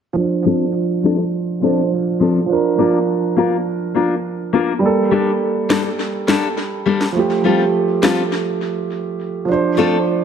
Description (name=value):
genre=dancehall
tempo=103 BPM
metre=4/4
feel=straight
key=D minor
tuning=A4 = 444 Hz
part: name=dark baby grand piano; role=accompaniment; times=0.1-10.2 s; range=F3 to C5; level=-18 LUFS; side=right 4 dB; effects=low-pass filter, tape echo
part: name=nylon-string guitar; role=arpeggios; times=0.4-10.0 s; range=F3 to Bb4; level=-18 LUFS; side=left 6 dB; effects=low-pass filter
part: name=electronic snare drum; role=drums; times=5.7-8.2 s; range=none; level=-22 LUFS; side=equal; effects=tape echo
room=moderate echo chamber reverb, RT60 1.5 s, small room ambience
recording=echo-heavy mix, lossy compression artefacts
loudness=-15 LUFS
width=side -8 dB against mid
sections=0.2-9.5 A section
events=filter sweep 0.2-9.5; break 8.3-9.5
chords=0.2 Dm7; 2.5 Bb; 4.8 Gmadd9; 7.2 Fadd9; 9.5 Dm7